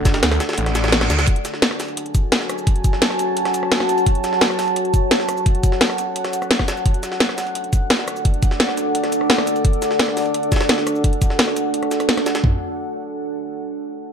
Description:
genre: dark technical drum and bass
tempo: 172 BPM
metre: 4/4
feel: straight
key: F# minor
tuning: A4 = 440 Hz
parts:
  - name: deep dark ambient pad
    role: sustained chords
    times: 0.0-12.6 s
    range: D4 to A5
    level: -21 LUFS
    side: equal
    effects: chorus, built-in reverb, sidechain pumping
  - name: snarling distorted saw bass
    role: bass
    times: 0.0-1.3 s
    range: F#1 to D2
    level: -20 LUFS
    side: equal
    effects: distortion, overdrive
  - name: drum and bass drum kit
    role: drums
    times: 0.1-12.5 s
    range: kick drum, toms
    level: -17 LUFS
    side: equal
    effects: none
  - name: drum and bass drum kit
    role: drums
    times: 0.1-12.4 s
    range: cabasa, hi-hat, rim click, snare drum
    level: -20 LUFS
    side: equal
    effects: none
  - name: jungle sampler-style drum kit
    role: drums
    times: 0.1-12.4 s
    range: hi-hat, snare drum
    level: -27 LUFS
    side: equal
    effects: high-pass filter on hats, high-pass filter on snare, high-pass filter on room
  - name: reverse cymbal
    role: sound effects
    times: 0.7-1.3 s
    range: none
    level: -26 LUFS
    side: right 5 dB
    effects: none
room: light reverb, digital ambience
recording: none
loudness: -16 LUFS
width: side -7 dB against mid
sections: 0.0-12.4 A section; 12.4-13.8 B section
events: reverse cymbal 0.7-1.3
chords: 0.0 D; 1.3 F#m; 6.9 D; 12.4 F#m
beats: 0.23 0.58 0.93 | 1.27 1.62 1.97 2.32 | 2.67 3.02 3.37 3.72 | 4.07 4.41 4.76 5.11 | 5.46 5.81 6.16 6.51 | 6.86 7.20 7.55 7.90 | 8.25 8.60 8.95 9.30 | 9.65 9.99 10.34 10.69 | 11.04 11.39 11.74 12.09 | 12.44

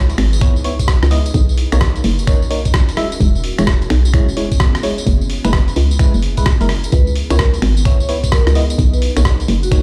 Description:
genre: UK garage, two-step garage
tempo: 129 BPM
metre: 4/4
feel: swing 64% on 16ths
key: C# dorian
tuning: A4 = 440 Hz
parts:
  - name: ethereal airy pad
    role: sustained chords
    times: 0.0-9.8 s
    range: A#3 to B4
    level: -31 LUFS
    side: equal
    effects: ensemble chorus, built-in reverb, sidechain pumping
  - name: hollow knocking FM bass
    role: bass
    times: 0.0-9.8 s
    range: E1 to C#2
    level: -18 LUFS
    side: equal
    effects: none
  - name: boom bap sampler-style drum kit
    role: drums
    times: 0.1-9.8 s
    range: finger snaps, hi-hat, rim click, tambourine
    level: -25 LUFS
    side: equal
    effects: studio reverb
  - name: FM electric piano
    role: stabs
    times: 0.4-9.8 s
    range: G#3 to E5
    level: -26 LUFS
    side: equal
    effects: chorus, phaser, low-pass filter, dub echo
  - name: electronic kick drum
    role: drums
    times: 0.4-9.8 s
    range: none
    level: -16 LUFS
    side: equal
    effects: studio reverb
  - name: vibraphone with soft mallets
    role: melody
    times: 6.9-9.8 s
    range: F#4 to C#5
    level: -27 LUFS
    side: equal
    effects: none
room: light reverb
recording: played on a big sound system in a bare room, large studio reverb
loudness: -15 LUFS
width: mono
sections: 0.0-9.8 A section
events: filter sweep on FM electric piano 0.0-9.8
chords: 0.0 C#m7; 1.3 Bmaj9; 3.0 E6; 4.8 F#9sus4; 6.9 C#m7; 8.8 Bmaj9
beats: 0.41 0.88 | 1.34 1.81 2.27 2.74 | 3.21 3.67 4.14 4.60 | 5.07 5.53 6.00 6.46 | 6.93 7.39 7.86 8.32 | 8.79 9.25 9.72

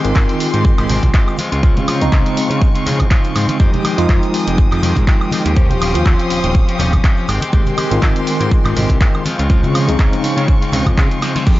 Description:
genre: filtered disco house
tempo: 122 BPM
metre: 4/4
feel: swing 55% on 16ths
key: unclear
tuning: A4 = 440 Hz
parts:
  - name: tine electric piano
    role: accompaniment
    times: 0.0-11.6 s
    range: Db3 to C5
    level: -20 LUFS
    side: equal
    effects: medium stereo tremolo, phaser, sidechain pumping
  - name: rich studio violin section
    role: sustained chords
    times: 0.0-11.6 s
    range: Ab3 to Eb6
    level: -25 LUFS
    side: equal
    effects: sidechain pumping
  - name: electric guitar at the edge of break-up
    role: riff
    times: 0.0-11.6 s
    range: Eb3 to G4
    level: -23 LUFS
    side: left 2 dB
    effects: vintage 12-bit sampler grit, sidechain pumping
  - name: fat analog bass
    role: bass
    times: 0.0-11.6 s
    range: Eb1 to Db3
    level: -19 LUFS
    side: equal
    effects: sidechain pumping
  - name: punchy analog drum machine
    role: drums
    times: 0.0-11.6 s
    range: crash cymbal, handclaps, hi-hat, snare drum, woodblock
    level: -23 LUFS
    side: right 1 dB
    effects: sidechain pumping on cymbals, sidechain pumping on hats, sidechain pumping on perc
  - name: tube shaker and congas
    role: percussion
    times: 0.0-11.6 s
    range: none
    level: -25 LUFS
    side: equal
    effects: none
  - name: electronic kick drum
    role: drums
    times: 0.2-11.6 s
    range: none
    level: -13 LUFS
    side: equal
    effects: none
room: digital ambience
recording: dry, gritty hardware recording, nothing above 7.6 kHz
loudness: -12 LUFS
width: side -16 dB against mid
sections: 0.0-11.6 A section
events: drum fill 11.2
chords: 0.0 Abmaj7; 1.4 Dbmaj7; 3.6 Fm9; 5.6 Eb13; 7.3 Abmaj7; 9.3 Dbmaj7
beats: 0.16 0.65 1.14 | 1.63 2.12 2.62 3.11 | 3.60 4.09 4.58 5.08 | 5.57 6.06 6.55 7.04 | 7.53 8.03 8.52 9.01 | 9.50 9.99 10.48 10.98 | 11.47

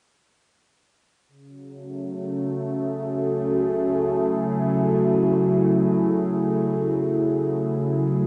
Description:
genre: ambient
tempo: free time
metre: none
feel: none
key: F# minor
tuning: A4 = 441 Hz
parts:
  - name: evolving wavetable pad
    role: solo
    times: 1.9-8.3 s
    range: C#3 to G#4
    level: -23 LUFS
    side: equal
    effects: chorus, built-in reverb, phaser, diffuse ambient delay
room: wet huge ambient reverb, RT60 7.7 s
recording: nothing above 10.4 kHz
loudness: -23 LUFS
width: mono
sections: 1.3-8.3 A section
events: none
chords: 1.3 F#m9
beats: free time

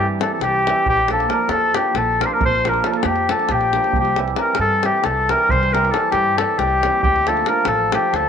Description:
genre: balkan folk, Balkan wedding band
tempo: 272 BPM (eighths)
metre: 7/8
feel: straight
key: C mixolydian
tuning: A4 = 439 Hz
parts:
  - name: clear clarinet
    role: melody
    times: 0.0-8.3 s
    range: G4 to C5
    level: -20 LUFS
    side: right 1 dB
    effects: slapback echo
  - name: mellow accordion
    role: second line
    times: 0.0-8.3 s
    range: G5 to C6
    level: -21 LUFS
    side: left 6 dB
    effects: none
  - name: cimbalom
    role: accompaniment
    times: 0.0-8.3 s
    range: E3 to F4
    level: -24 LUFS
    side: right 12 dB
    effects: none
  - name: upright bass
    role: bass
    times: 0.0-8.3 s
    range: A1 to G2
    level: -26 LUFS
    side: equal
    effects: none
  - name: davul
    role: percussion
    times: 0.2-8.3 s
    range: none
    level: -25 LUFS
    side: left 3 dB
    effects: none
room: wet spring reverb, RT60 1.1 s, small room ambience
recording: 1960s-style stereo with parts hard left and right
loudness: -15 LUFS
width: side -7 dB against mid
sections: 0.0-8.3 A section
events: none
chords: 0.0 C; 0.9 Bb; 4.0 C; 7.0 Dm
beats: 0.20 0.42 0.64 | 0.86 1.08 1.31 1.53 1.75 1.97 2.19 | 2.41 2.63 2.86 3.08 3.30 3.52 3.74 | 3.96 4.18 4.40 4.62 4.84 5.06 5.28 | 5.50 5.72 5.94 6.16 6.38 6.60 6.82 | 7.04 7.26 7.48 7.70 7.92 8.14

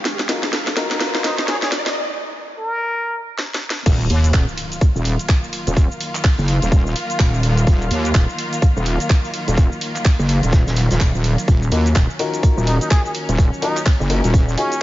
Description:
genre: bass house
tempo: 126 BPM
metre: 4/4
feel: swing 60% on 16ths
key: Eb minor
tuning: A4 = 440 Hz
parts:
  - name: dark symphonic string section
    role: sustained chords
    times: 0.0-14.8 s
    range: Eb3 to F5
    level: -27 LUFS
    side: equal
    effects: sidechain pumping
  - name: riser and impact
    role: sound effects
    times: 0.0-5.8 s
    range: none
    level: -28 LUFS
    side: equal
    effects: none
  - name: garage drum kit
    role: drums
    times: 0.1-14.8 s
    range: crash cymbal, handclaps, hi-hat, ride cymbal, shaker, snare drum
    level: -24 LUFS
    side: equal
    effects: studio reverb
  - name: vintage brush drum kit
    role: drums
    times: 0.1-14.7 s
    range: hi-hat, snare drum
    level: -34 LUFS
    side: equal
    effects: none
  - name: dark baby grand piano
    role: stabs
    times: 0.3-2.0, 11.7-14.7 s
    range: Eb4 to Bb4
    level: -26 LUFS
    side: left 3 dB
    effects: sidechain pumping, tape echo
  - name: trumpet with plunger mute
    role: melody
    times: 1.2-3.2, 12.7-14.8 s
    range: Db4 to Bb4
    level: -25 LUFS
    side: equal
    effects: tape echo
  - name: wobble bass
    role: bass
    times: 3.9-14.6 s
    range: Eb1 to Eb2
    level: -17 LUFS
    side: equal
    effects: chorus, tube saturation, sidechain pumping
  - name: electronic kick drum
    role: drums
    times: 3.9-14.5 s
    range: none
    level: -14 LUFS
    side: equal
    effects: studio reverb
room: studio ambience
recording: high-pass filter, nothing above 7.5 kHz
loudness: -16 LUFS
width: side -15 dB against mid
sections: 0.0-3.9 A section; 3.9-14.8 B section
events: build-up 0.0-3.9; drum fill 0.0-2.0, 3.4-3.9; riser 0.0-2.0; break 2.0-3.9; drop 3.9-14.8; impact 3.9-5.8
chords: 0.0 Ebmadd9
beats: | 0.05 0.53 1.00 1.48 | 1.96 2.43 2.91 3.38 | 3.86 4.34 4.81 5.29 | 5.77 6.24 6.72 7.19 | 7.67 8.15 8.62 9.10 | 9.57 10.05 10.53 11.00 | 11.48 11.96 12.43 12.91 | 13.38 13.86 14.34 14.81

